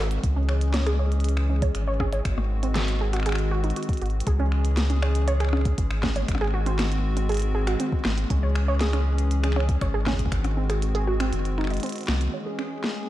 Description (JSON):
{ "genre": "IDM", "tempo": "119 BPM", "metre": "4/4", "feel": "straight", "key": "C# harmonic minor", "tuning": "A4 = 439 Hz", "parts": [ { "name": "hollow soft pad", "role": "sustained chords", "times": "0.0-13.1 s", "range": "D#3 to G#4", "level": "-32 LUFS", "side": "left 1 dB", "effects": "chorus, sidechain pumping" }, { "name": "warm sub bass", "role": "bass", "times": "0.0-12.3 s", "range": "F#1 to C#2", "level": "-24 LUFS", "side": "equal", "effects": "none" }, { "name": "glitchy drum kit", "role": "drums", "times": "0.1-12.9 s", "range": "finger snaps, hi-hat, percussion blips, snare drum", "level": "-31 LUFS", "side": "left 1 dB", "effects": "tape echo" }, { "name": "electronic kick drum", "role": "drums", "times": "0.2-10.4 s", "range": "none", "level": "-27 LUFS", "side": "equal", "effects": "none" }, { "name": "warbly dusty pluck", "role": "arpeggios", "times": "0.4-12.6 s", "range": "B#3 to D#5", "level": "-31 LUFS", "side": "right 3 dB", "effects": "chorus, tape echo" } ], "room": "light reverb", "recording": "dark, warm production", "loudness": "-22 LUFS", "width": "side -14 dB against mid", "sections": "0.0-12.3 A section", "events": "kick drops out 11.3-12.3", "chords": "0.2 C#m; 2.3 G#7; 4.3 C#m; 6.3 G#7; 8.3 C#m; 10.3 G#7; 12.3 C#m" }